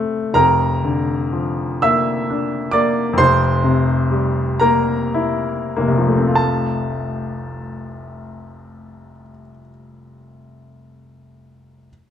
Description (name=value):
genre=classical, romantic nocturne for solo piano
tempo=30-45 BPM (dotted quarters)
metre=6/8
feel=rubato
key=F major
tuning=A4 = 440 Hz
part: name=clear baby grand piano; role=solo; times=0.0-11.9 s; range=F1 to E6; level=-16 LUFS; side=equal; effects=none
room=light reverb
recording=none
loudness=-15 LUFS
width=side -9 dB against mid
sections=0.3-6.4 A section; 6.4-9.6 B section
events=slowing down 0.0-6.4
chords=0.3 Bb/F; 3.2 C7/F; 6.4 F